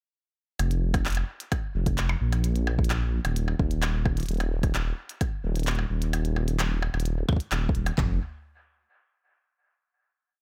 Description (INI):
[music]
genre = IDM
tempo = 130 BPM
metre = 4/4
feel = straight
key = unclear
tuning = A4 = 440 Hz
[part]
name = dark detuned saw bass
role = bass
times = 0.6-8.2 s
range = Eb1 to Bb1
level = -28 LUFS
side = equal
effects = none
[part]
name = glitchy drum kit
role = drums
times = 0.6-8.0 s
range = handclaps, hi-hat, percussion blips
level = -35 LUFS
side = equal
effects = small room ambience, dub echo
[part]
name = glitchy drum kit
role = drums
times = 0.9-8.1 s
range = handclaps, kick drum, toms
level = -29 LUFS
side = equal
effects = small room ambience
[sound]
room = little or no reverb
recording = echo-heavy mix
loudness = -27 LUFS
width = mono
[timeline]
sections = 0.6-8.0 groove; 8.0-9.8 final note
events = none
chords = none